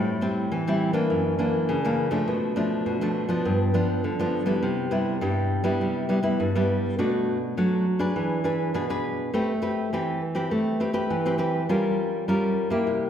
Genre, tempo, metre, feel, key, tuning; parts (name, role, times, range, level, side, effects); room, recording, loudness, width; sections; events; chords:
samba; 102 BPM; 4/4; straight; C major from 4.6 s; A4 = 438 Hz
nylon-string guitar; solo; 0.0-13.1 s; F#2 to B4; -22 LUFS; equal
wet recital hall reverb, RT60 1.7 s; recorded in a church or concert hall; -22 LUFS; side -9 dB against mid
0.0-4.6 A section; 4.6-13.1 B section
0.0 Am7; 1.1 F#7b13; 2.3 Bm7b5; 3.5 G7; 4.6 Cmaj7; 7.0 Bm7; 8.2 E7; 9.3 Am9; 11.7 Gm7b5